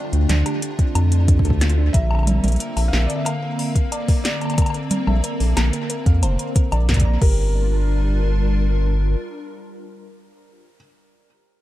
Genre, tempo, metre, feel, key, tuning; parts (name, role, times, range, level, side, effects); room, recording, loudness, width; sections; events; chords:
IDM; 91 BPM; 4/4; straight; G dorian; A4 = 442 Hz
felt-muted upright piano; melody; 0.0-10.8 s; Bb4 to F5; -33 LUFS; equal; vintage 12-bit sampler grit, dub echo
hollow soft pad; sustained chords; 0.0-10.6 s; D3 to Bb4; -27 LUFS; left 1 dB; ensemble chorus
harp-like synth pluck; arpeggios; 0.0-7.5 s; C4 to Bb5; -31 LUFS; right 2 dB; chorus, phaser, analog delay
round analog bass; bass; 0.1-9.2 s; F1 to F2; -18 LUFS; equal; tube saturation
electro analog drum machine; drums; 0.1-7.3 s; congas, crash cymbal, hi-hat, snare drum, woodblock; -25 LUFS; equal; tape echo
electronic kick drum; drums; 0.8-7.3 s; -17 LUFS; equal
little or no reverb; echo-heavy mix; -17 LUFS; side -15 dB against mid
0.0-7.2 A section; 7.2-9.9 B section
0.0 Dm; 1.9 Bbadd9; 7.2 Gm7